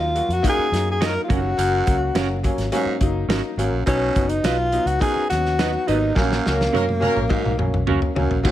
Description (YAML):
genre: uptempo 1960s-style soul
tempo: 105 BPM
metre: 4/4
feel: straight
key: unclear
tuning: A4 = 440 Hz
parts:
  - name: breathy tenor saxophone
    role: melody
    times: 0.0-8.5 s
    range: Bb3 to Bb4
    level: -22 LUFS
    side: left 1 dB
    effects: none
  - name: clear upright piano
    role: accompaniment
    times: 0.0-8.5 s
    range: Gb3 to Gb4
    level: -25 LUFS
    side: left 2 dB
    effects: none
  - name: vintage muted fingered electric bass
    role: bass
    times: 0.0-8.5 s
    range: Gb1 to Gb2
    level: -25 LUFS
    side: equal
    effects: none
  - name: warm soul drum kit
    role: drums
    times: 0.2-8.5 s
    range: crash cymbal, hi-hat, kick drum, snare drum, toms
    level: -24 LUFS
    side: equal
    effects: none
  - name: growling baritone saxophone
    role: riff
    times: 0.4-8.5 s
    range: D#2 to B2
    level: -28 LUFS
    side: right 5 dB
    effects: none
  - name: clean electric guitar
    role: stabs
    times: 1.0-8.0 s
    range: Db4 to Eb5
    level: -27 LUFS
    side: right 9 dB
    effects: none
  - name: clear horn section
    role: second line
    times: 6.4-7.2 s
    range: Gb3 to Bb4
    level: -28 LUFS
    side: equal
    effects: none
room: light reverb, small room ambience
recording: none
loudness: -18 LUFS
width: side -12 dB against mid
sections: 0.0-8.4 A section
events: drum fill 6.2-8.4; band accent 6.2-8.4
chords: 0.0 Ebm; 1.3 Gb; 3.9 B; 6.2 Gb/Bb